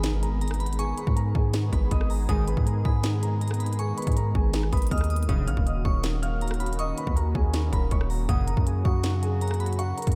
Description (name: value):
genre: hip hop, trap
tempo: 160 BPM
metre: 4/4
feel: half-time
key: G# dorian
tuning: A4 = 440 Hz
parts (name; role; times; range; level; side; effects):
- dark concert grand piano; melody; 0.0-10.1 s; F#4 to E#6; -37 LUFS; equal; subtle chorus, low-pass filter, diffuse ambient delay
- glassy synth bell; second line; 0.0-10.2 s; A#5 to E#6; -41 LUFS; equal; chorus, diffuse ambient delay
- warm analog pad; sustained chords; 0.0-10.2 s; C#3 to G#4; -36 LUFS; equal; chorus
- long sustained 808-style bass; bass; 0.0-10.2 s; D#1 to G#2; -28 LUFS; equal; none
- trap drum kit; drums; 0.0-10.2 s; hi-hat, kick drum, rim click, snare drum; -30 LUFS; equal; none
- impact; sound effects; 0.0-0.8 s; none; barely audible; none; none
- chorused polysynth; stabs; 2.3-2.4, 5.3-5.4, 8.3-8.4 s; A#1 to D#3; -39 LUFS; equal; none
room: light reverb, digital ambience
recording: none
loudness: -25 LUFS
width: mono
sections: 0.0-10.2 A section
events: impact 0.0-0.8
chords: 0.0 G#m; 5.3 D#m7; 8.3 F#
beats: 0.04 0.41 | 0.79 1.16 1.54 1.91 | 2.29 2.66 3.04 3.41 | 3.79 4.16 4.54 4.91 | 5.29 5.66 6.04 6.41 | 6.79 7.16 7.54 7.91 | 8.29 8.66 9.04 9.41 | 9.79